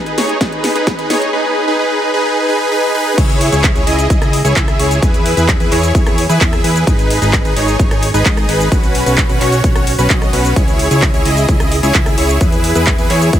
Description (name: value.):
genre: EDM, festival progressive house.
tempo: 130 BPM.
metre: 4/4.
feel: straight.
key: C# minor.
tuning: A4 = 440 Hz.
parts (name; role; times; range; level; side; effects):
supersaw chords; riff; 0.0-13.4 s; C#4 to E5; -15 LUFS; equal; sidechain pumping, low-pass filter, tape echo.
big-room dance drum kit; drums; 0.1-13.4 s; cabasa, crash cymbal, handclaps, hi-hat, rim click, snare drum; -20 LUFS; equal; none.
electronic kick drum; drums; 0.4-13.4 s; none; -14 LUFS; equal; none.
fat analog bass; bass; 3.2-13.4 s; G#1 to G#2; -16 LUFS; equal; sidechain pumping.
room: light reverb, digital ambience.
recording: high-pass filter.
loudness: -11 LUFS.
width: side -11 dB against mid.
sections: 0.0-3.2 A section; 3.2-13.4 B section.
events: build-up 0.0-3.2; drum fill 0.0-1.3; drop 3.2-13.4.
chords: 0.0 G#m; 1.3 G#m/D#; 3.2 C#m; 5.0 E; 6.9 G#m; 8.7 Bsus2; 10.6 C#m; 12.4 E.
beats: 0.41 0.87 | 1.33 1.79 2.25 2.72 | 3.18 3.64 4.10 4.56 | 5.03 5.49 5.95 6.41 | 6.87 7.33 7.79 8.26 | 8.72 9.18 9.64 10.10 | 10.56 11.03 11.49 11.95 | 12.41 12.87 13.33.